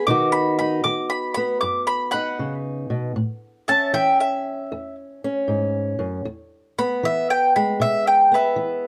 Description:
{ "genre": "acoustic country blues, solo or duo", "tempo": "78 BPM", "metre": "4/4", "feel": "swing 67% on 8ths", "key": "E major", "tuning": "A4 = 441 Hz", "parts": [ { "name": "mandolin", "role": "melody", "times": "0.0-8.9 s", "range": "B4 to D6", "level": "-22 LUFS", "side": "equal", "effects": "none" }, { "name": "fingerpicked old ladder-braced acoustic guitar", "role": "accompaniment", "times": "0.0-8.9 s", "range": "E2 to F#4", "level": "-26 LUFS", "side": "equal", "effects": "none" } ], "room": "light reverb", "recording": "close, detailed microphones", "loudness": "-22 LUFS", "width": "mono", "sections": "0.0-8.9 A section", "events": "none", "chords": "0.1 B; 3.2 A; 6.3 E", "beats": "| 0.06 0.84 1.61 2.39 | 3.16 3.94 4.71 5.48 | 6.26 7.03 7.81 8.58" }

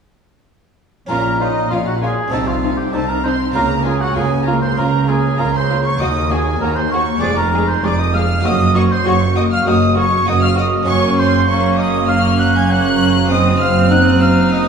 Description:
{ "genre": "classical, baroque-style concerto movement with solo episodes", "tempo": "98 BPM", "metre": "4/4", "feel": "straight", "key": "Bb minor", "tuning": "A4 = 438 Hz", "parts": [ { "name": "mellow oboe", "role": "melody", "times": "1.1-14.7 s", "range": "Eb4 to Ab5", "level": "-19 LUFS", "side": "right 1 dB", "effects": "none" }, { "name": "rich chamber violin section", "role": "melody", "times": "1.1-14.7 s", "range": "Eb5 to Ab6", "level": "-23 LUFS", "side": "left 2 dB", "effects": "none" }, { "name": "rich chamber violin section", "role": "second line", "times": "1.1-14.7 s", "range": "Bb3 to Ab4", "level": "-23 LUFS", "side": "left 2 dB", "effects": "none" }, { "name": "harpsichord", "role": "accompaniment", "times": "1.1-14.7 s", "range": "Eb2 to Bb4", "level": "-24 LUFS", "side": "right 2 dB", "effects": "none" }, { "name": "rich chamber viola section", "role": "accompaniment", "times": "1.1-14.7 s", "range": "Ab3 to Db4", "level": "-22 LUFS", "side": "right 1 dB", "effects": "none" }, { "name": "rich chamber double bass section", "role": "bass", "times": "1.1-14.7 s", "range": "F1 to Eb2", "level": "-22 LUFS", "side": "right 2 dB", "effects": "none" }, { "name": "warm chamber cello section", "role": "bass", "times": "1.1-14.7 s", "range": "Eb2 to Db3", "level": "-18 LUFS", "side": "right 3 dB", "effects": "none" } ], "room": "wet concert hall reverb, RT60 1.8 s", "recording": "heard from further back in the room, small room ambience", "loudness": "-13 LUFS", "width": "side -6 dB against mid", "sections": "1.1-14.7 A section", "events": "none", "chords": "1.1 Bbm; 2.3 Adim/C; 3.6 Bbm/Db; 6.0 Ebm; 7.2 Ddim/F; 8.4 Gb6; 10.9 Gb; 13.3 Ab7/Gb", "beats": "| 1.10 1.72 2.33 2.94 | 3.55 4.17 4.78 5.39 | 6.00 6.61 7.22 7.83 | 8.44 9.05 9.66 10.26 | 10.87 11.47 12.08 12.69 | 13.30 13.91 14.52" }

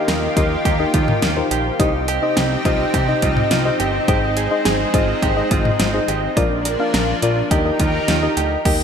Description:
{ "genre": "synth-pop", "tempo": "105 BPM", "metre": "4/4", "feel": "straight", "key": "Eb major", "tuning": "A4 = 438 Hz", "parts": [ { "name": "mellow FM electric piano", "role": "accompaniment", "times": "0.0-8.8 s", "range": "D4 to F5", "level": "-21 LUFS", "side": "left 3 dB", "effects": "chorus" }, { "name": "lush unison pad", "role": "sustained chords", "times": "0.0-8.6 s", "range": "C3 to Bb4", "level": "-23 LUFS", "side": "equal", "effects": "chorus" }, { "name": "open-back banjo", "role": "arpeggios", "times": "0.1-8.8 s", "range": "Eb4 to Bb4", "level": "-25 LUFS", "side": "right 6 dB", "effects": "ping-pong delay" }, { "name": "fat analog bass", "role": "bass", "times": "0.1-8.8 s", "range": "G1 to Eb2", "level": "-23 LUFS", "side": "equal", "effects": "none" }, { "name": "pop drum kit", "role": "drums", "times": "0.1-8.8 s", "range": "crash cymbal, hi-hat, kick drum, snare drum, toms", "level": "-21 LUFS", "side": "equal", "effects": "overdrive" } ], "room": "wet lush hall reverb, RT60 1.9 s", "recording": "bright 1980s-style digital production", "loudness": "-16 LUFS", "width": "side -7 dB against mid", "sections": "0.0-8.7 A section", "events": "none", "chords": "0.0 Ebadd9; 1.8 Cm; 4.1 Ab; 6.4 Bb; 7.5 Eb", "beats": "0.08 0.65 1.23 | 1.80 2.37 2.94 3.51 | 4.08 4.65 5.22 5.80 | 6.37 6.94 7.51 8.08 | 8.65" }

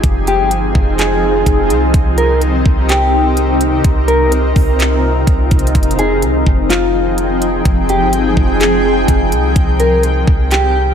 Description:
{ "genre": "hip hop, atmospheric cloud-rap", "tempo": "126 BPM", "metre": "4/4", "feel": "half-time", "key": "F minor", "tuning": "A4 = 440 Hz", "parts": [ { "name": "granular cloud pad", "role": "sustained chords", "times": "0.0-10.9 s", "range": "C3 to G5", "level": "-16 LUFS", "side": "equal", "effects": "built-in reverb, sidechain pumping" }, { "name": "clean 808-style bass", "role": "bass", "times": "0.0-10.9 s", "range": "F1 to C2", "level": "-16 LUFS", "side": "equal", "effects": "none" }, { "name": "trap drum kit", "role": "drums", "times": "0.0-10.6 s", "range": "handclaps, hi-hat, kick drum", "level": "-15 LUFS", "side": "equal", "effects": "none" }, { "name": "mellow electric guitar", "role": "melody", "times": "0.3-10.9 s", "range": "F4 to Bb4", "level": "-17 LUFS", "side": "left 1 dB", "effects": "lush chorus, low-pass filter, ping-pong delay" } ], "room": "light reverb, digital ambience", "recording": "none", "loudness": "-10 LUFS", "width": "side -8 dB against mid", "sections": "0.0-10.9 A section", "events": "none", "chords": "0.0 Fm7; 1.9 Cm7; 5.7 Fm7; 9.6 Cm7", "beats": "| 0.04 0.51 0.99 1.46 | 1.94 2.42 2.89 3.37 | 3.85 4.32 4.80 5.27 | 5.75 6.23 6.70 7.18 | 7.65 8.13 8.61 9.08 | 9.56 10.04 10.51" }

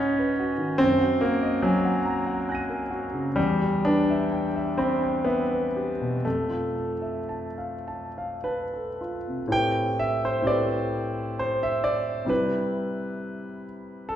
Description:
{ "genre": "classical, impressionist solo piano", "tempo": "48-74 BPM", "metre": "3/4", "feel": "rubato", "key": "A minor", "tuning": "A4 = 440 Hz", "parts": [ { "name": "clear concert grand piano", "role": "solo", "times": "0.0-14.2 s", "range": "E2 to D#7", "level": "-24 LUFS", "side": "equal", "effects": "none" } ], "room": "wet recital hall reverb, RT60 1.4 s", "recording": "heard from further back in the room", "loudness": "-23 LUFS", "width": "side -10 dB against mid", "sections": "0.0-9.5 A section; 9.5-14.2 B section", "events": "none", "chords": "0.0 G#m7; 0.8 F#69; 3.4 Em7; 6.2 Fmaj7; 9.5 Am11; 12.3 Cmaj7", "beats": "| 0.80 1.63 2.47 | 3.37 4.33 5.26 | 6.25 7.29 8.45 | 9.51 10.48 11.40 | 12.30 13.19 14.09" }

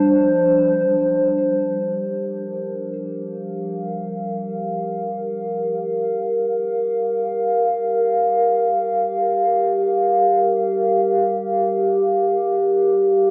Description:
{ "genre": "ambient", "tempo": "free time", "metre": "none", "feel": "none", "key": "G minor", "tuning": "A4 = 440 Hz", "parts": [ { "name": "warbly tape-like pad", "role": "sustained chords", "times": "0.0-13.3 s", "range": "F3 to F5", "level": "-20 LUFS", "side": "equal", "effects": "chorus, built-in reverb" }, { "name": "soft synth bell", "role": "arpeggios", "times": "0.0-1.4 s", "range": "C5 to G5", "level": "-42 LUFS", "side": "equal", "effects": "none" } ], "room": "wet cathedral reverb, RT60 5.9 s", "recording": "worn, warbling old tape, cassette tape, warbly pitch drift", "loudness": "-20 LUFS", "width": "mono", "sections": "0.9-13.3 A section", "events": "filter sweep on ambient pad 0.9-13.3", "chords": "0.0 Gm7", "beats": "free time" }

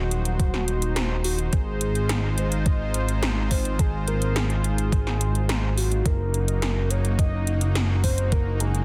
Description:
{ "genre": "synthwave", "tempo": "106 BPM", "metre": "4/4", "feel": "straight", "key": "Eb dorian", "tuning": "A4 = 439 Hz", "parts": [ { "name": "soft octave-layered synth lead", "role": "melody", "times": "0.0-8.8 s", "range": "Gb4 to Eb5", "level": "-34 LUFS", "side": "equal", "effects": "chorus, phaser, tape echo" }, { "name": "warm analog pad", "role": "sustained chords", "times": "0.0-8.8 s", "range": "Eb3 to C5", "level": "-35 LUFS", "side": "equal", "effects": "chorus, sidechain pumping" }, { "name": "chorused synth bass", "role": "bass", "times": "0.0-8.8 s", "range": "Eb1 to Ab1", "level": "-26 LUFS", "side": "equal", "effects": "none" }, { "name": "80s electronic pad drums", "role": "drums", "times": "0.1-8.8 s", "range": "hi-hat, snare drum", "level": "-32 LUFS", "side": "equal", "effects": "none" }, { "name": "electronic kick drum", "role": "drums", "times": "0.4-8.4 s", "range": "none", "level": "-25 LUFS", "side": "equal", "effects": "none" } ], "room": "light reverb", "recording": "dense, heavily limited modern master", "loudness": "-24 LUFS", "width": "mono", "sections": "0.0-8.8 A section", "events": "none", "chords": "0.0 Ebm; 1.5 Ab6; 6.1 Ebm/Gb", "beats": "0.40 0.96 | 1.53 2.09 2.66 3.23 | 3.79 4.36 4.92 5.49 | 6.06 6.62 7.19 7.75 | 8.32" }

